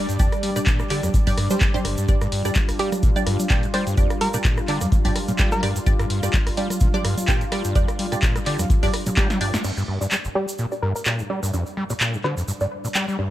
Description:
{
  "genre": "acid house",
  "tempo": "127 BPM",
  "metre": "4/4",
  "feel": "swing 55% on 16ths",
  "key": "G minor pentatonic",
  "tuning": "A4 = 440 Hz",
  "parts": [
    { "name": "lush unison pad", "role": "sustained chords", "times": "0.0-13.3 s", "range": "G3 to D5", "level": "-30 LUFS", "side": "equal", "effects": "chorus, sidechain pumping" },
    { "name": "overdriven acid bass", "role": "riff", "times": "0.0-13.3 s", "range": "G1 to G3", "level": "-26 LUFS", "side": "equal", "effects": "distortion, wide subtle chorus, cassette tape, sidechain pumping, tape echo" },
    { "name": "filtered dub chord stab", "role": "stabs", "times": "0.0-13.3 s", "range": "D4 to G5", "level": "-29 LUFS", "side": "right 2 dB", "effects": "phaser, wide subtle chorus, tape echo" },
    { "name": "punchy analog drum machine", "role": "drums", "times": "0.1-13.1 s", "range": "congas, crash cymbal, handclaps, hi-hat, rim click, snare drum", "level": "-26 LUFS", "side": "equal", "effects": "none" },
    { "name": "egg shaker", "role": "percussion", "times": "0.1-13.2 s", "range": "none", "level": "-36 LUFS", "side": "right 2 dB", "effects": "none" },
    { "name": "electronic kick drum", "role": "drums", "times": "0.2-9.3 s", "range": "none", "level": "-20 LUFS", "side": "equal", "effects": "none" },
    { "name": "hollow square pluck", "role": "melody", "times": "2.8-5.9, 10.4-12.9 s", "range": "G4 to C5", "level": "-29 LUFS", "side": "equal", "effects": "chorus, tape echo" }
  ],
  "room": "digital ambience",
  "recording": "none",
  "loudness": "-19 LUFS",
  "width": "side -14 dB against mid",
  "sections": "0.0-9.6 A section; 9.6-13.3 B section",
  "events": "drop 0.0-9.6; drum fill 9.2-9.6; band accent 9.5",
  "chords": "0.0 G5",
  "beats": "| 0.20 0.67 1.14 1.61 | 2.08 2.56 3.03 3.50 | 3.98 4.45 4.92 5.39 | 5.87 6.34 6.81 7.28 | 7.75 8.23 8.70 9.17 | 9.64 10.12 10.59 11.06 | 11.53 12.01 12.48 12.95"
}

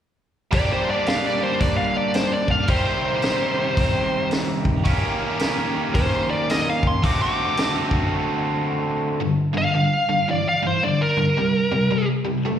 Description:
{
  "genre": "blues rock power trio and southern rock",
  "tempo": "111 BPM",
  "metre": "4/4",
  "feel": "swing 62% on 8ths",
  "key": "G minor",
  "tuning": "A4 = 440 Hz",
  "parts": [
    { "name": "bluesy overdriven lead guitar", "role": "melody", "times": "0.5-12.1 s", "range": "Bb4 to D6", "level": "-22 LUFS", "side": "equal", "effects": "distortion, slapback echo" },
    { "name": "biting overdriven guitar", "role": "riff", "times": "0.5-12.6 s", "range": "G2 to G4", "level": "-22 LUFS", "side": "equal", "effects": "slapback echo" },
    { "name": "vintage drum kit", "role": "drums", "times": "0.5-8.0 s", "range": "hi-hat, kick drum, snare drum", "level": "-23 LUFS", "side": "equal", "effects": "none" }
  ],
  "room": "light reverb",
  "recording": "live gig heard through the venue's PA, recital hall reverb",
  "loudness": "-19 LUFS",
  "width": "side -9 dB against mid",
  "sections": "0.5-9.2 A section; 9.2-12.6 B section",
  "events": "break 8.1-9.2",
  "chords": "0.5 Gm; 2.7 Cm; 4.9 Eb7; 7.0 D7; 9.2 G5; 11.4 C5",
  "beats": "| 0.53 1.07 1.61 2.15 | 2.69 3.24 3.78 4.32 | 4.86 5.41 5.95 6.49 | 7.04 7.58 8.12 8.66 | 9.21 9.75 10.29 10.84 | 11.38 11.92 12.46"
}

